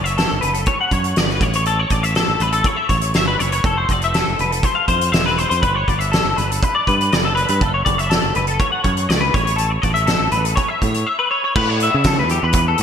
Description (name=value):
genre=math rock and midwest emo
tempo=121 BPM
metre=4/4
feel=straight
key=D major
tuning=A4 = 440 Hz
part: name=clean electric guitar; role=arpeggios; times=0.0-12.8 s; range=G4 to F#5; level=-18 LUFS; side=left 2 dB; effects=ensemble chorus, ping-pong delay
part: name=growling fingered electric bass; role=bass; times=0.0-12.8 s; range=E1 to C#3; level=-21 LUFS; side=right 1 dB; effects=overdrive
part: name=loose indie drum kit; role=drums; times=0.1-12.8 s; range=crash cymbal, hi-hat, kick drum, snare drum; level=-20 LUFS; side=right 1 dB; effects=gated reverb
room=moderate lush hall reverb, RT60 1.7 s, small room ambience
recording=bright 1980s-style digital production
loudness=-15 LUFS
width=side -8 dB against mid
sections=0.0-11.6 A section; 11.6-12.8 B section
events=none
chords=0.0 Dmaj7/F# (rootless); 3.6 Fmaj7; 5.6 Gmaj7; 7.6 Dmaj7/F#; 9.3 A; 11.6 Aadd9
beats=0.17 0.67 1.16 | 1.66 2.15 2.65 3.14 | 3.64 4.13 4.63 5.13 | 5.62 6.12 6.62 7.11 | 7.61 8.10 8.60 9.09 | 9.59 10.08 10.57 11.07 | 11.56 12.05 12.54